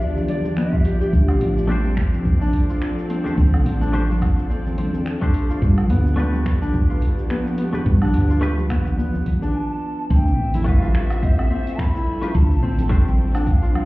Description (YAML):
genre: organic downtempo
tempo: 107 BPM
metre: 4/4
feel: swing 56% on 16ths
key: D dorian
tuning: A4 = 439 Hz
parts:
  - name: breathy hollow bansuri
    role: melody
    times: 0.0-1.1, 9.5-13.9 s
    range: D5 to B5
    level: -32 LUFS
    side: left 2 dB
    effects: tape echo
  - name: warm symphonic string section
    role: sustained chords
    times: 0.0-13.9 s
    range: F3 to E5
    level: -30 LUFS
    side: equal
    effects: sidechain pumping
  - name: Celtic harp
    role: arpeggios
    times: 0.0-13.9 s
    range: B3 to D5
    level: -26 LUFS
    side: left 1 dB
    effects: ping-pong delay
  - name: woody fretless electric bass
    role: bass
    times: 0.0-13.7 s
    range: A1 to G2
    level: -19 LUFS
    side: equal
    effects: sidechain pumping
  - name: deep house drum kit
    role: drums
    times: 0.0-13.9 s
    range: cabasa, finger snaps, hi-hat, woodblock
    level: -36 LUFS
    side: right 1 dB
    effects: none
  - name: congas and bongos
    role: percussion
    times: 0.2-13.9 s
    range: none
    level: -28 LUFS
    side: equal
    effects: none
  - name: electronic kick drum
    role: drums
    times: 0.7-13.6 s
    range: none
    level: -19 LUFS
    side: equal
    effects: none
  - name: semi-hollow electric guitar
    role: accompaniment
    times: 1.7-13.0 s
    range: A3 to C5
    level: -30 LUFS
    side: left 1 dB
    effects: tremolo, sidechain pumping, ping-pong delay
room: light reverb, small room ambience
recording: heard muffled through a wall, club reverb, EQ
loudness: -17 LUFS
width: side -20 dB against mid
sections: 0.0-10.1 A section; 10.1-13.9 B section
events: stop 9.5-10.1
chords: 0.0 G7; 1.1 Dm7; 5.6 G7; 10.1 Fmaj7; 12.3 Dm7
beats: 0.01 0.57 | 1.13 1.69 2.25 2.81 | 3.37 3.94 4.50 5.06 | 5.62 6.18 6.74 7.30 | 7.86 8.42 8.98 9.54 | 10.10 10.66 11.22 11.79 | 12.35 12.91 13.47